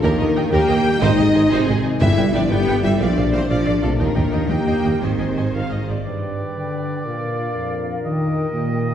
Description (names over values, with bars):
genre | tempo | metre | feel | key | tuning
cinematic, heroic adventure film score | 121 BPM (dotted quarters) | 6/8 | straight | unclear | A4 = 441 Hz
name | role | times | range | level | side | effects
warm symphonic violin section | melody | 0.0-5.9 s | Ab4 to G5 | -30 LUFS | left 2 dB | none
rich studio violin section | second line | 0.0-5.9 s | Ab4 to G5 | -28 LUFS | left 2 dB | none
rich symphonic viola section | accompaniment | 0.0-6.1 s | Eb4 to Ab5 | -28 LUFS | right 1 dB | none
dark French horn section | sustained chords | 0.0-5.9 s | Ab3 to G4 | -22 LUFS | left 1 dB | none
concert harp | arpeggios | 0.0-8.9 s | G2 to Eb5 | -27 LUFS | left 3 dB | none
clear tuba | bass | 0.0-6.0 s | G1 to Eb2 | -25 LUFS | right 2 dB | none
rich symphonic cello section | bass | 0.0-5.9 s | C3 to B3 | -24 LUFS | right 2 dB | none
rich symphonic double bass section | bass | 0.0-6.0 s | G1 to Eb2 | -23 LUFS | right 2 dB | none
timpani | percussion | 2.0-2.5 s | G2 | -24 LUFS | left 2 dB | none
large flute ensemble | second line | 6.0-8.9 s | F5 to G5 | -34 LUFS | left 1 dB | none
bright oboe | second line | 6.1-8.9 s | D5 to Eb5 | -30 LUFS | right 2 dB | none
clear clarinet | second line | 6.1-8.9 s | Bb4 to B4 | -29 LUFS | left 1 dB | none
clear trombone section | sustained chords | 6.1-8.9 s | F2 to Eb3 | -24 LUFS | equal | none
room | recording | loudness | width
wet scoring stage reverb, RT60 2.0 s | heard from further back in the room | -17 LUFS | side -9 dB against mid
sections
0.0-6.1 A section; 6.1-8.9 B section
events
none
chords
0.0 Eb; 1.0 Ab; 2.0 G; 3.0 Bb; 4.0 Eb; 5.0 Ab; 6.1 G; 7.1 Bb; 8.0 Eb